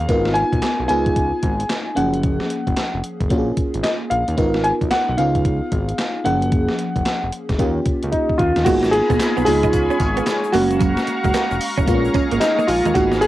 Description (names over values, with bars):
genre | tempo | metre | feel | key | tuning
R&B, new jack swing | 112 BPM | 4/4 | swing 63% on 16ths | unclear | A4 = 444 Hz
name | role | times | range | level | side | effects
warm grand piano | melody | 0.0-13.3 s | D#4 to G#5 | -21 LUFS | equal | cassette tape
FM electric piano with soft pad layer | accompaniment | 0.0-13.3 s | E#3 to E#5 | -22 LUFS | equal | chorus, phaser, cassette tape
fat analog bass | bass | 0.0-13.3 s | E#1 to D#2 | -23 LUFS | equal | none
gated 80s digital drum machine | drums | 0.1-13.3 s | crash cymbal, handclaps, hi-hat, kick drum, snare drum, tambourine | -23 LUFS | equal | gated reverb, gated reverb snare, cassette tape
lush unison pad | sustained chords | 8.7-13.3 s | E#4 to C#6 | -26 LUFS | left 1 dB | chorus, cassette tape
direct-recorded clean electric guitar | riff | 8.7-13.3 s | F#3 to D#4 | -23 LUFS | right 8 dB | ensemble chorus, cassette tape
egg shaker | percussion | 8.7-13.3 s | none | -46 LUFS | left 10 dB | none
room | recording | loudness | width
light reverb | home recording on cassette | -16 LUFS | side -15 dB against mid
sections
0.0-8.7 A section; 8.7-13.3 B section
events
drum fill 8.1-8.7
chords
0.1 G#m69; 0.9 C#7; 2.0 F#maj7; 3.3 A#m7; 4.4 G#m69; 5.2 C#7; 6.3 F#maj7; 7.6 D#7; 8.7 G#m69; 9.5 C#7; 10.5 F#maj7; 11.9 A#m7